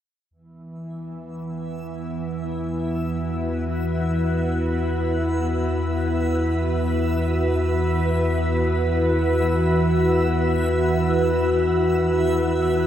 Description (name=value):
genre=ambient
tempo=free time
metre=none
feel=none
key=unclear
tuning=A4 = 439 Hz
part: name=glassy FM pad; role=sustained chords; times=0.6-12.9 s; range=E3 to B4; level=-22 LUFS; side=left 1 dB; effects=ensemble chorus, built-in reverb
part: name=warm sub bass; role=bass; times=0.3-12.9 s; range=E2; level=-25 LUFS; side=equal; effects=none
part: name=bowed-like drone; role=drone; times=1.0-12.9 s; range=E3 to B3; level=-29 LUFS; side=right 2 dB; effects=built-in reverb
part: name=backwards swelling texture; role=texture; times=1.7-12.9 s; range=E5 to E6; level=-35 LUFS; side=equal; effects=built-in reverb
room=wet shimmer reverb, RT60 8.4 s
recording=none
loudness=-20 LUFS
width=side -10 dB against mid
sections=0.3-12.9 A section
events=fade-in on synth texture 0.3-12.9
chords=0.3 Esus2